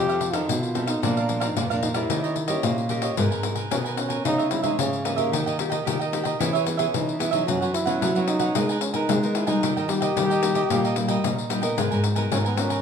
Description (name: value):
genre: samba and choro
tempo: 112 BPM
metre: 4/4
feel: straight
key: G# minor from 3.2 s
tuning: A4 = 439 Hz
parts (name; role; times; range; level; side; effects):
- mellow trombone; melody; 0.0-12.8 s; A#3 to G4; -27 LUFS; equal; none
- cavaquinho; accompaniment; 0.0-12.8 s; D4 to G#5; -29 LUFS; right 7 dB; none
- nylon-string guitar; accompaniment; 0.0-12.8 s; F2 to A#4; -30 LUFS; left 2 dB; none
- nylon-string guitar; bass; 0.0-12.8 s; G#2 to G#3; -27 LUFS; right 1 dB; none
- pandeiro; percussion; 0.1-12.8 s; none; -28 LUFS; left 8 dB; none
room: moderate large studio reverb, RT60 1.1 s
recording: minimal, uncompressed stereo recording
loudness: -21 LUFS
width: side -7 dB against mid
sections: 0.0-3.2 A section; 3.2-12.8 B section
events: none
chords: 0.0 F7; 1.0 Bb; 2.1 Eb7; 3.2 G#madd9; 4.3 C#madd9; 5.3 D#; 6.4 E6; 7.5 F#sus4; 8.6 G#madd9; 9.6 D#; 11.8 G#madd9